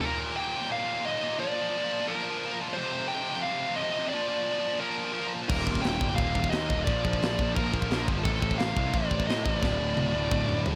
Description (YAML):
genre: heavy metal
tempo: 175 BPM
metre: 4/4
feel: straight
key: unclear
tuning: A4 = 440 Hz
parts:
  - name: high-gain lead guitar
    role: melody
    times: 0.0-10.6 s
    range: A4 to G5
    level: -33 LUFS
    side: equal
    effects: distortion
  - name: heavy high-gain guitar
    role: riff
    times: 0.0-10.8 s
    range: D2 to F3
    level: -34 LUFS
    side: equal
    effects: distortion
  - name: fuzz picked electric bass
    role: bass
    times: 5.5-10.8 s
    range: D1 to A2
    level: -32 LUFS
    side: equal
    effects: overdrive
  - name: tight metal drum kit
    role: drums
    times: 5.5-10.7 s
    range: china cymbal, crash cymbal, kick drum, snare drum, toms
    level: -32 LUFS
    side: equal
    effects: none
room: studio ambience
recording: none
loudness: -28 LUFS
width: mono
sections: 0.0-10.8 A section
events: drum fill 9.6-10.8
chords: 0.0 Eb; 1.4 Bb; 2.8 F5; 4.1 Bb; 5.5 Eb; 6.9 Bb; 8.3 F/A; 9.6 D5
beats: | 0.02 0.36 0.70 1.05 | 1.39 1.73 2.08 2.42 | 2.76 3.10 3.45 3.79 | 4.13 4.47 4.82 5.16 | 5.50 5.85 6.19 6.53 | 6.88 7.22 7.56 7.91 | 8.25 8.59 8.94 9.28 | 9.63 9.97 10.31 10.66